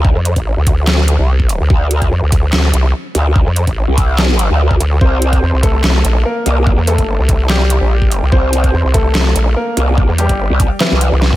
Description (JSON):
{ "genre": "heavy wobble dubstep", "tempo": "145 BPM", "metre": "4/4", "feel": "half-time", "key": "unclear", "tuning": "A4 = 440 Hz", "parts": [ { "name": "growl bass", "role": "bass", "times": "0.0-11.1 s", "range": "C2 to D2", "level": "-13 LUFS", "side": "equal", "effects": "chorus, overdrive" }, { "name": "electronic kick drum", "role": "drums", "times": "0.0-11.4 s", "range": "none", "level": "-14 LUFS", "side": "equal", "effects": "none" }, { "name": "vowel-sweep wobble bass", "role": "bass", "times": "0.2-11.4 s", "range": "G1 to F2", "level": "-12 LUFS", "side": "equal", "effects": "chorus, overdrive" }, { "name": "dubstep drum kit", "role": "drums", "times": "0.3-11.3 s", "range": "handclaps, hi-hat, snare drum", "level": "-18 LUFS", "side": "equal", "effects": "none" }, { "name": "clear grand piano", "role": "melody", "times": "5.0-11.4 s", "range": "E3 to C5", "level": "-19 LUFS", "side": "left 1 dB", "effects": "diffuse ambient delay" } ], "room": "light reverb, digital ambience", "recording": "none", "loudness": "-11 LUFS", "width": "side -16 dB against mid", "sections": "0.0-11.4 A section", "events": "none", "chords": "0.0 N.C.; 5.0 C5", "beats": "| 0.05 0.46 0.87 1.29 | 1.70 2.12 2.53 2.94 | 3.36 3.77 4.18 4.60 | 5.01 5.43 5.84 6.25 | 6.67 7.08 7.50 7.91 | 8.32 8.74 9.15 9.56 | 9.98 10.39 10.80 11.22" }